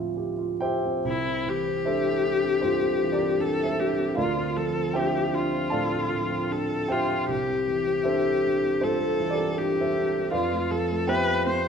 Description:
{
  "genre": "classical, impressionist duo for viola and grand piano",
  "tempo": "78 BPM",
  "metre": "4/4",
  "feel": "rubato",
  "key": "C mixolydian",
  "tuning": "A4 = 440 Hz",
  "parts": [
    { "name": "dark baby grand piano", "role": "accompaniment", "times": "0.0-11.7 s", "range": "C2 to A5", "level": "-26 LUFS", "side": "right 2 dB", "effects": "none" },
    { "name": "clear viola", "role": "melody", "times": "1.1-11.7 s", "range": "E4 to C5", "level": "-26 LUFS", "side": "left 4 dB", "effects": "none" }
  ],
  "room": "moderate recital hall reverb, RT60 1.6 s",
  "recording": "minimal, uncompressed stereo recording",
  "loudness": "-23 LUFS",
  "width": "side -6 dB against mid",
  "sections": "0.0-1.1 A section; 1.1-11.7 B section",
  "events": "none",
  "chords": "0.0 Dm11; 1.1 Cadd9; 4.2 Dm9; 7.3 Cadd9; 10.3 Fmaj7#11"
}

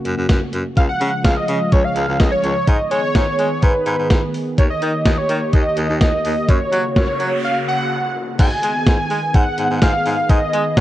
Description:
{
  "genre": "synth-pop",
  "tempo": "126 BPM",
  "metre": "4/4",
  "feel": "straight",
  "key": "G# dorian",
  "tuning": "A4 = 440 Hz",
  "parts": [
    { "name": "warm analog pad", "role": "sustained chords", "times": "0.0-10.8 s", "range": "C#3 to G#4", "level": "-25 LUFS", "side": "left 1 dB", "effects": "chorus" },
    { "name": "clear baritone saxophone", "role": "bass", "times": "0.1-10.8 s", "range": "C#2 to G#3", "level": "-22 LUFS", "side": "equal", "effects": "none" },
    { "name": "clean 12-bit digital drum machine", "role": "drums", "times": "0.1-10.8 s", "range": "crash cymbal, hi-hat, kick drum, snare drum", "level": "-16 LUFS", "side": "equal", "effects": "none" },
    { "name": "wide unison lead", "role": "melody", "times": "0.8-10.8 s", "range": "B4 to G#5", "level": "-20 LUFS", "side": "right 1 dB", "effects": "digital delay" },
    { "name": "noise sweep", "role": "sound effects", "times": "6.9-8.4 s", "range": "none", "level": "-30 LUFS", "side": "right 3 dB", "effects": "none" }
  ],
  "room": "light reverb, digital ambience",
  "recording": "worn, warbling old tape, cassette tape, warbly pitch drift",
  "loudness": "-15 LUFS",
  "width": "side -14 dB against mid",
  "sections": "0.0-8.4 A section; 8.4-10.8 B section",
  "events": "noise sweep 6.9-8.4; break 7.4-8.4",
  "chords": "0.0 F#; 0.8 C#; 2.7 G#m; 4.6 D#; 6.5 F#; 8.4 G#m"
}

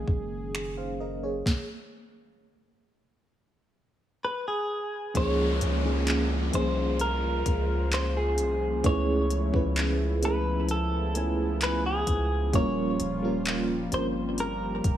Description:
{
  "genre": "contemporary R&B",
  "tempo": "65 BPM",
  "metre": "4/4",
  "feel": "straight",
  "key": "unclear",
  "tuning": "A4 = 440 Hz",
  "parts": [
    { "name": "FM electric piano with tremolo", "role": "accompaniment", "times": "0.0-15.0 s", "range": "F3 to G#5", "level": "-30 LUFS", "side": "right 1 dB", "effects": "phaser" },
    { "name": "warm analog pad", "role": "sustained chords", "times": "0.0-15.0 s", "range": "Eb3 to C5", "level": "-35 LUFS", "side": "left 1 dB", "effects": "chorus" },
    { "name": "long sustained 808-style bass", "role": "bass", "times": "0.0-15.0 s", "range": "Eb1 to Db2", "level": "-30 LUFS", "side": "equal", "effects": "none" },
    { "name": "smooth R&B drum kit", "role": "drums", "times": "0.1-15.0 s", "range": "finger snaps, handclaps, hi-hat, kick drum, snare drum", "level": "-30 LUFS", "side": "equal", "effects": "overdrive" },
    { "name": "direct-recorded clean electric guitar", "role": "melody", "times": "4.2-15.0 s", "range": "Ab4 to Db5", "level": "-31 LUFS", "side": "equal", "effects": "digital delay" },
    { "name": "downlifter", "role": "sound effects", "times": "5.2-12.5 s", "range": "none", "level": "-38 LUFS", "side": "left 1 dB", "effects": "none" }
  ],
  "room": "light reverb, digital ambience",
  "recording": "none",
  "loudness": "-25 LUFS",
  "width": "side -11 dB against mid",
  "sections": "0.0-5.2 A section; 5.2-15.0 B section",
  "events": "stop 1.5-5.2",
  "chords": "0.0 Gb69; 1.5 N.C.; 5.2 Db6; 8.8 Amaj7/C#; 12.5 Eb13"
}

